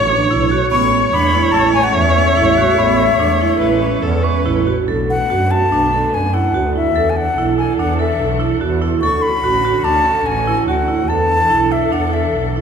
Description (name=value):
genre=contemporary instrumental, chamber music in an uneven meter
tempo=145 BPM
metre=5/4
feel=straight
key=B dorian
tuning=A4 = 444 Hz
part: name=warm viola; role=second line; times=0.0-4.7 s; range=A4 to C#5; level=-18 LUFS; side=equal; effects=none
part: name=warm studio string section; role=sustained chords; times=0.0-12.6 s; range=D3 to C#5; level=-24 LUFS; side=left 2 dB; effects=none
part: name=warm double bass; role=bass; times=0.0-12.6 s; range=A1 to F#2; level=-19 LUFS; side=right 2 dB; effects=none
part: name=vibraphone with medium hard mallets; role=arpeggios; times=0.1-12.6 s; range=B3 to A4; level=-19 LUFS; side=right 6 dB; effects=none
part: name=breathy silver concert flute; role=melody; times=0.7-12.6 s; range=E5 to C#6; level=-17 LUFS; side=left 4 dB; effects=none
room=wet recital hall reverb, RT60 1.9 s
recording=minimal, uncompressed stereo recording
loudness=-13 LUFS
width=side -7 dB against mid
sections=0.0-4.9 A section; 4.9-12.6 B section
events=none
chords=0.0 Dmaj9; 0.7 Amaj9; 4.9 Bm7; 9.0 Dmaj7; 11.1 E7sus4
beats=0.31 | 0.72 1.14 1.54 1.96 2.37 | 2.78 3.19 3.61 4.03 4.45 | 4.88 5.29 5.71 6.13 6.54 | 6.96 7.37 7.79 8.20 8.61 | 9.02 9.43 9.85 10.26 10.68 | 11.09 11.51 11.93 12.35